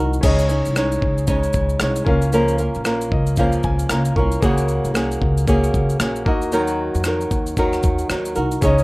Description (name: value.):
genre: acoustic pop.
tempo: 114 BPM.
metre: 4/4.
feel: swing 60% on 16ths.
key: unclear.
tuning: A4 = 439 Hz.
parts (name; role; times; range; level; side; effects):
clear concert grand piano; accompaniment; 0.0-8.8 s; Bb3 to Db6; -29 LUFS; left 2 dB; none.
flamenco guitar; accompaniment; 0.0-8.8 s; Db3 to Db5; -20 LUFS; right 1 dB; none.
upright bass; bass; 0.0-8.8 s; Bb1 to F2; -21 LUFS; equal; none.
dusty soul sampler-style drum kit; drums; 0.1-8.8 s; crash cymbal, kick drum, rim click, shaker; -23 LUFS; equal; none.
room: little or no reverb.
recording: rough home demo mix.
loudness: -16 LUFS.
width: side -22 dB against mid.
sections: 0.2-8.8 A section.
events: grand piano fill 2.9-4.4.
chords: 0.2 Dbsus2; 2.1 Bbm; 4.4 Gbadd9; 6.3 Ebm.